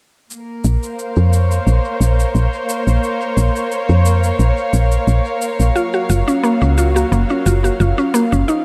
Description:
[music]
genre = organic downtempo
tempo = 88 BPM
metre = 4/4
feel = swing 54% on 16ths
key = Bb minor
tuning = A4 = 440 Hz
[part]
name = muted studio string section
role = sustained chords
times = 0.3-8.6 s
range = F3 to F5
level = -23 LUFS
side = equal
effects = none
[part]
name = cabasa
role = drums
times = 0.3-8.6 s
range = none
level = -33 LUFS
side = equal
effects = tape echo
[part]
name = woody FM bass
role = bass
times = 0.6-8.4 s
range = Gb1 to F2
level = -16 LUFS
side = equal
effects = tube saturation
[part]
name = mallet-like synth pluck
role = arpeggios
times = 5.8-8.6 s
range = Bb3 to Gb4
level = -19 LUFS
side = equal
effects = chorus, cassette tape, tape echo
[sound]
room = light reverb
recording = echo-heavy mix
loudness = -16 LUFS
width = mono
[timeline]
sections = 0.3-8.6 A section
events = none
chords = 0.3 Bbmadd9; 5.8 Gbmaj7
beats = | 0.30 0.98 1.67 2.35 | 3.03 3.71 4.39 5.08 | 5.76 6.44 7.12 7.80 | 8.48

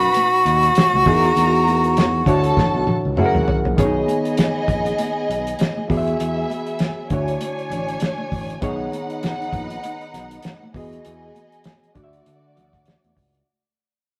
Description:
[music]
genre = lush 1970s-style soul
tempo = 99 BPM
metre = 4/4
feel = swing 58% on 16ths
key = B major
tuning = A4 = 439 Hz
[part]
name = breathy tenor saxophone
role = melody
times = 0.0-3.2 s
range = F#4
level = -19 LUFS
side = equal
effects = none
[part]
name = dark studio string section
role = second line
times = 0.0-13.4 s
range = A3 to B5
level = -28 LUFS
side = equal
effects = none
[part]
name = barky reed electric piano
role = accompaniment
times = 0.0-13.5 s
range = B2 to E5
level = -26 LUFS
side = equal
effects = overdrive
[part]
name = overdriven fingered electric bass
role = bass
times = 0.0-13.4 s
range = F#1 to D3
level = -27 LUFS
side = equal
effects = none
[part]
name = cloth-damped thuddy drum kit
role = drums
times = 0.0-13.5 s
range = hi-hat, kick drum, snare drum, toms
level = -24 LUFS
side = equal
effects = none
[part]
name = congas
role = percussion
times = 0.2-13.2 s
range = none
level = -32 LUFS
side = equal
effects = none
[sound]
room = moderate stone room reverb, RT60 1.1 s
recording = rough rehearsal-room recording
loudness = -19 LUFS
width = mono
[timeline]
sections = 0.0-3.8 A section; 3.8-13.5 B section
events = drum fill 2.6-3.8; fade-out 3.8-13.5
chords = 0.0 B7; 1.1 Emaj7; 2.3 Dmaj7; 3.2 F#7; 3.8 B6; 5.9 E; 7.1 Dmaj7; 8.6 B6; 10.7 Emaj7; 11.9 Dmaj7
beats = 0.15 0.75 | 1.36 1.96 2.57 3.17 | 3.78 4.38 4.99 5.59 | 6.20 6.80 7.41 8.02 | 8.62 9.22 9.83 10.44 | 11.04 11.65 12.25 12.86

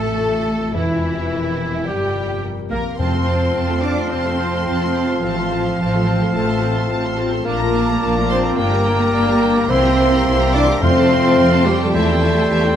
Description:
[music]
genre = classical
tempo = 107 BPM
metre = 4/4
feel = straight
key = F major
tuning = A4 = 440 Hz
[part]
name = clear symphonic violin section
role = melody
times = 0.0-12.8 s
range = E4 to C6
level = -29 LUFS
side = left 2 dB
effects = none
[part]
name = clear oboe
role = second line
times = 0.0-12.8 s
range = E4 to G5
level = -27 LUFS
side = right 1 dB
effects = none
[part]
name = concert flute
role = second line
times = 0.0-12.8 s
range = E4 to C6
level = -30 LUFS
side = left 1 dB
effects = none
[part]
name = dark clarinet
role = second line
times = 0.0-12.8 s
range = E4 to D5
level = -24 LUFS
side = equal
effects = none
[part]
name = warm symphonic violin section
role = second line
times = 0.0-12.8 s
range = E5 to D6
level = -28 LUFS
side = left 1 dB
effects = none
[part]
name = clear symphonic viola section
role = accompaniment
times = 0.0-12.8 s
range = E3 to A4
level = -27 LUFS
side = right 2 dB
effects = none
[part]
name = mellow bassoon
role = accompaniment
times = 0.0-12.8 s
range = E3 to C4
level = -27 LUFS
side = right 2 dB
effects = none
[part]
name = mellow French horn section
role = sustained chords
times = 0.0-12.8 s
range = E3 to D4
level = -25 LUFS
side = left 4 dB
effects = none
[part]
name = concert harp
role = arpeggios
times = 0.0-12.8 s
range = F2 to D5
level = -26 LUFS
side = left 9 dB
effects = none
[part]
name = rich symphonic cello section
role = bass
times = 0.0-12.8 s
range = E3 to D4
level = -22 LUFS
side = right 2 dB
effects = none
[part]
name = rich symphonic double bass section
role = bass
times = 0.0-12.8 s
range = E1 to F2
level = -22 LUFS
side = right 2 dB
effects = none
[part]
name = timpani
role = percussion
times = 0.7-3.8, 9.7-11.6 s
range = F2 to C3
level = -25 LUFS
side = left 2 dB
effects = none
[sound]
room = moderate scoring stage reverb, RT60 1.9 s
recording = none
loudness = -15 LUFS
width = side -9 dB against mid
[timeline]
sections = 0.0-12.8 A section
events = none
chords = 0.0 F/A; 0.8 C7/E; 3.0 F; 5.2 F/A; 7.5 Bbmaj7; 8.6 Gm; 9.7 C7; 10.8 F; 11.9 C/E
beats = 0.20 | 0.77 1.33 1.88 2.44 | 3.00 3.56 4.12 4.67 | 5.23 5.79 6.34 6.90 | 7.46 8.01 8.57 9.13 | 9.70 10.26 10.82 11.39 | 11.95 12.51

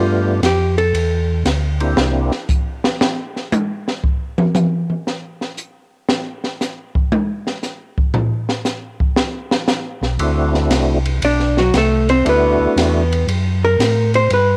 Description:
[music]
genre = soul jazz organ trio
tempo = 117 BPM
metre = 4/4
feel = swing 68% on 8ths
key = unclear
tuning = A4 = 439 Hz
[part]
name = percussive tonewheel organ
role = melody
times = 0.0-2.3, 10.2-13.0 s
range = A3 to G4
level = -23 LUFS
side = equal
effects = slow rotary speaker, overdrive, chorus vibrato, cassette tape
[part]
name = hollow-body jazz guitar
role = accompaniment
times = 0.0-1.4, 11.2-14.6 s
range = F#3 to D5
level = -18 LUFS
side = equal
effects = cassette tape
[part]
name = mellow tonewheel organ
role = bass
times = 0.0-2.3, 10.0-14.6 s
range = B1 to A2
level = -20 LUFS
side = equal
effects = chorus vibrato, slow rotary speaker
[part]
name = open jazz drum kit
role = drums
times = 0.4-14.5 s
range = hi-hat, kick drum, ride cymbal, snare drum, toms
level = -22 LUFS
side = equal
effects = cassette tape
[sound]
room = light reverb, studio ambience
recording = home recording on cassette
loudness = -18 LUFS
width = mono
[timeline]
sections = 0.0-14.6 A section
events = hollow-body jazz guitar solo 0.0-14.6; drum solo 2.0-10.2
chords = 0.0 G9; 2.0 N.C.; 10.2 D9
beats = 0.43 0.94 1.46 | 1.97 2.49 3.00 3.52 | 4.03 4.54 5.06 5.57 | 6.08 6.60 7.11 7.63 | 8.14 8.65 9.17 9.68 | 10.20 10.71 11.22 11.73 | 12.25 12.76 13.28 13.79 | 14.30

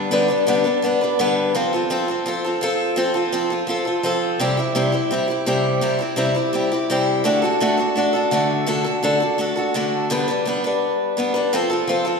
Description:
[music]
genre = country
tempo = 168 BPM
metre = 4/4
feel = straight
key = G mixolydian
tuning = A4 = 440 Hz
[part]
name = picked steel-string acoustic guitar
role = solo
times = 0.0-12.2 s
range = G2 to B4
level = -18 LUFS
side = equal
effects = none
[sound]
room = wet scoring stage reverb, RT60 1.8 s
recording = recorded in a church or concert hall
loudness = -18 LUFS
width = side -4 dB against mid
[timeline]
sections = 0.0-10.1 A section; 10.1-12.2 B section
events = none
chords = 0.0 G; 1.5 F; 4.4 C; 7.3 D; 10.1 G; 11.5 F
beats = | 0.12 0.47 0.83 1.19 | 1.55 1.90 2.26 2.62 | 2.97 3.33 3.69 4.04 | 4.40 4.76 5.11 5.47 | 5.83 6.18 6.54 6.90 | 7.25 7.61 7.96 8.32 | 8.68 9.03 9.39 9.75 | 10.10 10.46 10.81 11.17 | 11.53 11.88

